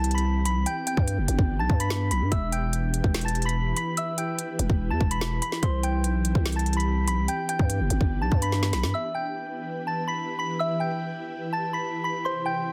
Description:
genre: hip hop, drill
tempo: 145 BPM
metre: 4/4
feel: half-time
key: E minor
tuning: A4 = 441 Hz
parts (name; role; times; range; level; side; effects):
- soft synth bell; melody; 0.0-12.7 s; C5 to B6; -32 LUFS; equal; chorus, phaser, digital delay
- ethereal airy pad; sustained chords; 0.0-12.7 s; C3 to B4; -36 LUFS; equal; ensemble chorus, built-in reverb
- growling 808-style bass; bass; 0.0-8.9 s; E1 to G2; -28 LUFS; equal; none
- drill drum kit; drums; 0.0-8.9 s; hi-hat, kick drum, snare drum; -28 LUFS; equal; none
room: digital ambience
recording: dense, heavily limited modern master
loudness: -26 LUFS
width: mono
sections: 0.0-8.9 A section; 8.9-12.7 B section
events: drum fill 8.5-8.9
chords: 0.0 C; 0.7 G; 2.3 Em; 5.6 C; 7.3 G; 8.9 Em

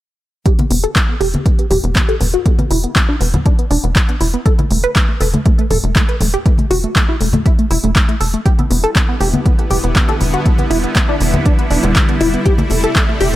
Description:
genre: progressive house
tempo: 120 BPM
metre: 4/4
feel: straight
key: E minor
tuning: A4 = 439 Hz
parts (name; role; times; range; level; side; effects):
- tight sequenced synth; arpeggios; 0.5-13.4 s; A3 to B4; -19 LUFS; equal; chorus, phaser, sidechain pumping, digital delay
- deep house drum kit; drums; 0.5-13.4 s; handclaps, hi-hat; -20 LUFS; equal; none
- electronic kick drum; drums; 0.5-13.1 s; none; -13 LUFS; equal; none
- congas and bongos; percussion; 0.6-13.4 s; none; -21 LUFS; left 1 dB; sidechain pumping on perc
- tight sequencer bass; bass; 0.7-13.4 s; E1; -17 LUFS; equal; sidechain pumping
- supersaw pad; sustained chords; 8.5-13.4 s; C3 to E4; -20 LUFS; equal; phaser, sidechain pumping
room: digital ambience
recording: none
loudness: -12 LUFS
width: side -15 dB against mid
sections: 0.5-13.4 A section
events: filter sweep on synth arpeggio sound 0.5-13.4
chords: 0.5 E5; 4.5 A5/E; 8.5 Em7; 12.5 Am7/E

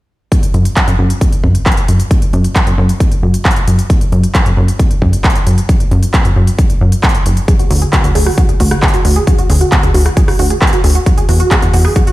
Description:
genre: uplifting trance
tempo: 134 BPM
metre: 4/4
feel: straight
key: unclear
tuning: A4 = 439 Hz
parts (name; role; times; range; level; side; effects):
- big-room dance drum kit; drums; 0.3-12.1 s; handclaps, hi-hat, rim click; -18 LUFS; equal; overdrive
- electronic kick drum; drums; 0.3-12.0 s; none; -12 LUFS; equal; overdrive
- plucky analog bass; bass; 0.5-11.9 s; F#1 to F#2; -11 LUFS; equal; sidechain pumping
- wide unison pluck; arpeggios; 7.5-12.1 s; F#4 to G#4; -18 LUFS; right 2 dB; analog chorus, sidechain pumping, dub echo
room: little or no reverb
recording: played on a big sound system in a bare room, stone room reverb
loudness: -9 LUFS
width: side -17 dB against mid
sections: 0.3-12.1 A section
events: none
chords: 0.3 N.C.; 7.5 D; 11.1 Esus2

